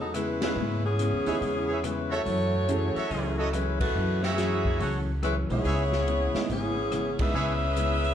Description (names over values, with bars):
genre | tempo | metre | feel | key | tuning
jazz, big band swing | 142 BPM | 4/4 | swing 65% on 8ths | C# minor | A4 = 440 Hz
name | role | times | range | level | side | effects
warm saxophone section | melody | 0.0-8.1 s | E3 to E5 | -28 LUFS | equal | none
vintage hollow-body jazz guitar | accompaniment | 0.0-8.1 s | F#2 to E4 | -34 LUFS | left 3 dB | none
upright bass | bass | 0.0-8.1 s | G#1 to G#2 | -30 LUFS | equal | none
swinging big-band drum kit | drums | 0.1-8.1 s | hi-hat, kick drum, ride cymbal, rim click, snare drum | -35 LUFS | equal | none
warm baby grand piano | accompaniment | 0.4-2.9, 5.5-7.3 s | G#3 to G#4 | -33 LUFS | right 4 dB | none
brilliant trumpet section | stabs | 1.3-7.5 s | E4 to F#5 | -33 LUFS | right 2 dB | none
room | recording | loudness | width
moderate large studio reverb, RT60 0.8 s | dark, warm production | -25 LUFS | side -9 dB against mid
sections
0.0-8.1 A section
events
band accent 0.4, 3.7, 7.1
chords
0.0 C#m7; 2.3 F#m7; 5.6 C#m7